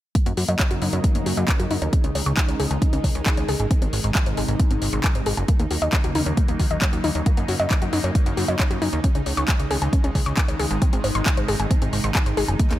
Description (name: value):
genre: uplifting trance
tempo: 135 BPM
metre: 4/4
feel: straight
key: unclear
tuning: A4 = 440 Hz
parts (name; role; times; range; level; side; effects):
- electronic kick drum; drums; 0.1-12.7 s; none; -20 LUFS; equal; overdrive
- house drum kit; drums; 0.1-12.8 s; handclaps, hi-hat; -28 LUFS; left 1 dB; overdrive
- supersaw pad; sustained chords; 0.2-12.8 s; C3 to Eb4; -28 LUFS; equal; phaser, sidechain pumping, low-pass filter
- wide unison pluck; arpeggios; 0.2-12.8 s; Bb3 to Db6; -28 LUFS; left 2 dB; sidechain pumping, tape echo
- plucky analog bass; bass; 0.3-12.8 s; Gb1 to Gb2; -25 LUFS; equal; sidechain pumping
room: digital ambience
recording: none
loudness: -19 LUFS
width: side -14 dB against mid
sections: 0.2-12.8 A section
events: filter sweep on synth arpeggio sound 0.2-12.8; filter sweep on supersaw synth 0.2-12.8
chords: 0.2 Gb6; 1.9 Dbsus2; 3.7 Ab; 5.5 Ebm7; 9.0 Dbsus2; 10.8 Ab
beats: | 0.15 0.60 1.04 1.49 | 1.93 2.37 2.82 3.26 | 3.71 4.15 4.60 5.04 | 5.49 5.93 6.37 6.82 | 7.26 7.71 8.15 8.60 | 9.04 9.48 9.93 10.37 | 10.82 11.26 11.71 12.15 | 12.60